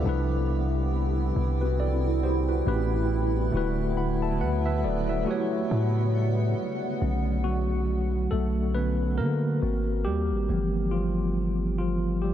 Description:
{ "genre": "R&B", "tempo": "69 BPM", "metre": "4/4", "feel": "swing 58% on 16ths", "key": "unclear", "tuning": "A4 = 440 Hz", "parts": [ { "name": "tine electric piano", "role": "accompaniment", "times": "0.0-12.3 s", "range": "A2 to B5", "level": "-28 LUFS", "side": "equal", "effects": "medium stereo tremolo" }, { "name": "granular cloud pad", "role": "sustained chords", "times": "0.0-7.0 s", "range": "C#3 to F#5", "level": "-32 LUFS", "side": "right 2 dB", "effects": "built-in reverb, wide subtle chorus" }, { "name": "long sustained 808-style bass", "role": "bass", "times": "0.0-12.3 s", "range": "D1 to D3", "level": "-27 LUFS", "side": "equal", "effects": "none" } ], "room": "moderate huge ambient reverb, RT60 6.8 s", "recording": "dreamy mix soaked in reverb", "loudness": "-24 LUFS", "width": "side -10 dB against mid", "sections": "0.0-7.0 A section; 7.0-12.3 B section", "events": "tine electric piano solo 7.0-12.3", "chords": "0.1 Cmaj9; 2.7 A7; 3.5 D69; 5.3 A13; 7.0 Bm9; 9.6 G#9; 10.5 G13" }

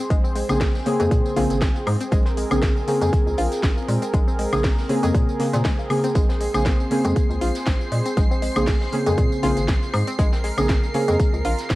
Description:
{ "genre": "deep house", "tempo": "119 BPM", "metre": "4/4", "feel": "swing 55% on 16ths", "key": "Bb minor", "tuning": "A4 = 440 Hz", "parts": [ { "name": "warm analog pad", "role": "sustained chords", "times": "0.0-11.8 s", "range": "C4 to C5", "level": "-29 LUFS", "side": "right 1 dB", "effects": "chorus, sidechain pumping" }, { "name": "analog pluck", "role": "arpeggios", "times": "0.0-11.5 s", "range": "Ab3 to F4", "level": "-30 LUFS", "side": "left 2 dB", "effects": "chorus, phaser, sidechain pumping, tape echo" }, { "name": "hollow knocking FM bass", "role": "bass", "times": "0.1-11.8 s", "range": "Ab1 to Bb2", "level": "-24 LUFS", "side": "equal", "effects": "sidechain pumping" }, { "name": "electronic kick drum", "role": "drums", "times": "0.1-11.8 s", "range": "none", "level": "-20 LUFS", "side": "equal", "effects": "none" }, { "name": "house drum kit", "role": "drums", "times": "0.1-11.8 s", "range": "hi-hat, snare drum, tambourine, woodblock", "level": "-31 LUFS", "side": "left 1 dB", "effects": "none" }, { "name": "vintage brush drum kit", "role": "drums", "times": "0.1-11.8 s", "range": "hi-hat, snare drum", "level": "-40 LUFS", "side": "left 1 dB", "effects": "none" }, { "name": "deep mellow chord stab", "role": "stabs", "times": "0.5-11.3 s", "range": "Db3 to Ab4", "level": "-23 LUFS", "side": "equal", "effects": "chorus, sidechain pumping, tape echo" }, { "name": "soft string machine", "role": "texture", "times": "6.2-11.8 s", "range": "C7", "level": "-35 LUFS", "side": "equal", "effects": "ensemble chorus, sidechain pumping" } ], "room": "light reverb", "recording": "vinyl crackle", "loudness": "-18 LUFS", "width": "side -18 dB against mid", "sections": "0.0-11.8 A section", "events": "none", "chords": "0.0 Bbm9" }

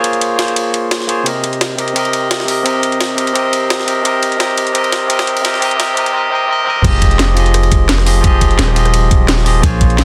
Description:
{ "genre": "liquid drum and bass", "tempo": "172 BPM", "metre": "4/4", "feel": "straight", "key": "F minor", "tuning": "A4 = 440 Hz", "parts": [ { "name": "barky tine electric piano", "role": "accompaniment", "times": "0.0-10.0 s", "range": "C3 to Eb5", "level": "-17 LUFS", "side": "equal", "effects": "digital delay" }, { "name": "drum and bass drum kit", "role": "drums", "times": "0.0-10.0 s", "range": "crash cymbal, hi-hat, rim click, snare drum, toms", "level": "-21 LUFS", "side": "equal", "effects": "none" }, { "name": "jungle sampler-style drum kit", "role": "drums", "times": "0.0-10.0 s", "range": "hi-hat, ride cymbal, snare drum", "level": "-24 LUFS", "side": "equal", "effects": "high-pass filter on snare, high-pass filter on cymbals, high-pass filter on hats" }, { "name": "long sustained 808-style bass", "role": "bass", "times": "6.8-10.0 s", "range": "Eb1 to Bb1", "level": "-15 LUFS", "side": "equal", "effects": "tube saturation" }, { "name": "electronic kick drum", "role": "drums", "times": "6.8-9.9 s", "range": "none", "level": "-15 LUFS", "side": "equal", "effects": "none" } ], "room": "moderate lush hall reverb, RT60 2.1 s", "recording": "dense, heavily limited modern master, high-pass filter", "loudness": "-14 LUFS", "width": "mono", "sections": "0.0-6.8 A section; 6.8-10.0 B section", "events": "build-up 0.0-6.8; drum fill 6.7; drop 6.8-10.0", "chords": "0.0 Bbm9; 1.3 Cm7; 6.8 Fm9" }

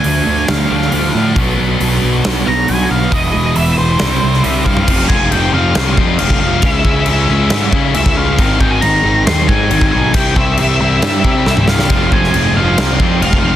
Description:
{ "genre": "quiet-loud alternative rock", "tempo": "137 BPM", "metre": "4/4", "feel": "straight", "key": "F harmonic minor from 4.9 s", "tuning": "A4 = 440 Hz", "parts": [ { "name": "octave-fuzz lead guitar", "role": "melody", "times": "0.0-13.6 s", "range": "C5 to C6", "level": "-18 LUFS", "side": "right 1 dB", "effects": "distortion, tape echo" }, { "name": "twelve-string electric guitar", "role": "arpeggios", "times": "0.0-4.9 s", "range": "B2 to F#4", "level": "-22 LUFS", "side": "right 6 dB", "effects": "analog chorus" }, { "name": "distorted electric guitar", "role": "riff", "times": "0.0-4.9, 11.9-13.6 s", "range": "B2 to F4", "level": "-21 LUFS", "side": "right 11 dB", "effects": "distortion" }, { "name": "scooped high-gain guitar", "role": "riff", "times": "0.0-13.6 s", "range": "E2 to F4", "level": "-18 LUFS", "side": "left 8 dB", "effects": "distortion" }, { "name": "fuzz picked electric bass", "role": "bass", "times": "0.0-13.6 s", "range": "E1 to Db3", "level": "-16 LUFS", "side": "equal", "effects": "overdrive" }, { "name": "huge arena drum kit", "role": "drums", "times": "0.0-13.4 s", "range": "crash cymbal, hi-hat, kick drum, snare drum, toms", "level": "-16 LUFS", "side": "equal", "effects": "soft clipping on snare" }, { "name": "tight distorted guitar", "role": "riff", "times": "4.9-13.6 s", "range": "F2 to Db4", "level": "-21 LUFS", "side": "equal", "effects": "distortion" } ], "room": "little or no reverb", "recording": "dense, heavily limited modern master", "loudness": "-10 LUFS", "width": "side -12 dB against mid", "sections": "0.0-4.9 A section; 4.9-13.6 B section", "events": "lead electric guitar solo 0.0-4.9; drum fill 4.7, 11.5-11.9", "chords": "0.0 Dm; 1.4 Bm; 3.1 E; 4.0 C; 4.9 Fm; 6.6 Dbm; 8.4 Ab; 10.1 C; 11.9 Fm" }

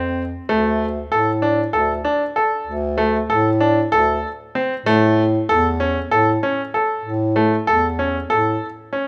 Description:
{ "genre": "contemporary instrumental, chamber music in an uneven meter", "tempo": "192 BPM (eighths)", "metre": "7/8", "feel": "straight", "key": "unclear", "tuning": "A4 = 439 Hz", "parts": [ { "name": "bright baby grand piano", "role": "arpeggios", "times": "0.0-9.1 s", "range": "A3 to A4", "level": "-20 LUFS", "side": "equal", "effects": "none" }, { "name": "mellow bass clarinet", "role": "bass", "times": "0.0-8.6 s", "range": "D2 to A2", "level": "-23 LUFS", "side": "equal", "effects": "none" } ], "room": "moderate recital hall reverb, RT60 1.6 s", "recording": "none", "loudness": "-19 LUFS", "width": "mono", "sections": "0.5-9.1 A section", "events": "none", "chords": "0.5 D5; 4.9 A" }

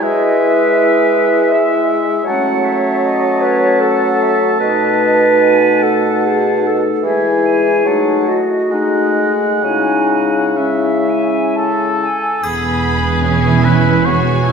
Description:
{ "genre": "classical, slow romantic movement for symphony orchestra", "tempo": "58-82 BPM", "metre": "3/4", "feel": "rubato", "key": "C# minor", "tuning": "A4 = 439 Hz", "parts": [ { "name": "small flute group", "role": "second line", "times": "0.0-12.4 s", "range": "C#5 to A5", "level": "-22 LUFS", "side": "equal", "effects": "none" }, { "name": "warm clarinet", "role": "second line", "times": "0.0-12.0 s", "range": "C#4 to E5", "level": "-16 LUFS", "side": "equal", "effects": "none" }, { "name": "warm oboe", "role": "second line", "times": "0.0-14.5 s", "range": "G#4 to A5", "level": "-19 LUFS", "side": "right 2 dB", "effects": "none" }, { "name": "clear bassoon", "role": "accompaniment", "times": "0.0-12.1 s", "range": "B2 to G#3", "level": "-17 LUFS", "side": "equal", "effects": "none" }, { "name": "mellow French horn section", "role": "sustained chords", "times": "0.0-12.1 s", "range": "G#3 to F#4", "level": "-20 LUFS", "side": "left 3 dB", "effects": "none" }, { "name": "rich studio violin section", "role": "melody", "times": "12.4-14.5 s", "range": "G#5 to B5", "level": "-24 LUFS", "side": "left 4 dB", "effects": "none" }, { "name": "warm studio violin section", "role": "second line", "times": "12.4-14.5 s", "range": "B3 to B4", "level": "-21 LUFS", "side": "left 3 dB", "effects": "none" }, { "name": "clear studio cello section", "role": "bass", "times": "12.4-14.5 s", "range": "E2", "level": "-19 LUFS", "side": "right 6 dB", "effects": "none" }, { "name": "rich studio double bass section", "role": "bass", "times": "12.4-14.5 s", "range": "E1", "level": "-16 LUFS", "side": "right 4 dB", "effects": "none" }, { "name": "triangle", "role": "percussion", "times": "12.4-14.0 s", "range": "none", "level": "-36 LUFS", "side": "left 4 dB", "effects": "none" }, { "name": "rich studio viola section", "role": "accompaniment", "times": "13.3-14.5 s", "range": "E4 to F#4", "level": "-20 LUFS", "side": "right 3 dB", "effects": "none" } ], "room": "wet concert hall reverb, RT60 1.9 s", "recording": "heard from further back in the room", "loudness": "-11 LUFS", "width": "side -6 dB against mid", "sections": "0.0-12.4 A section; 12.4-14.5 B section", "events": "none", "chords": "0.0 E/G#; 2.3 F#m; 4.6 B7; 7.0 E; 7.9 D#dim/F#; 8.7 G#5; 9.6 C#m; 12.4 E" }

